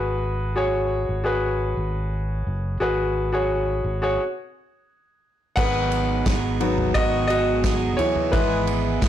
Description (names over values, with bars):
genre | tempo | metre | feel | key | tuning
piano-driven pop | 87 BPM | 4/4 | straight | unclear | A4 = 438 Hz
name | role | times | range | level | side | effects
clear concert grand piano | accompaniment | 0.0-9.1 s | E3 to F#5 | -23 LUFS | left 1 dB | none
fingered electric bass | bass | 0.0-9.1 s | F#1 to G#1 | -26 LUFS | equal | none
picked steel-string acoustic guitar | riff | 5.6-9.1 s | G#2 to G#4 | -26 LUFS | right 7 dB | none
unplugged drum kit | drums | 5.6-9.1 s | crash cymbal, kick drum, ride cymbal, snare drum, toms | -26 LUFS | equal | none
tambourine | percussion | 6.3-9.1 s | none | -39 LUFS | right 12 dB | none
room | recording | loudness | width
light reverb, studio ambience | blown-out, overdriven recording, overdrive | -20 LUFS | side -11 dB against mid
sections
0.0-5.6 A section; 5.6-9.1 B section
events
stop 4.2-5.6; grand piano solo 5.6-9.1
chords
0.0 G#m7; 8.3 E/G#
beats
| 0.05 0.74 1.43 2.12 | 2.81 3.50 4.19 4.88 | 5.57 6.26 6.95 7.64 | 8.33 9.02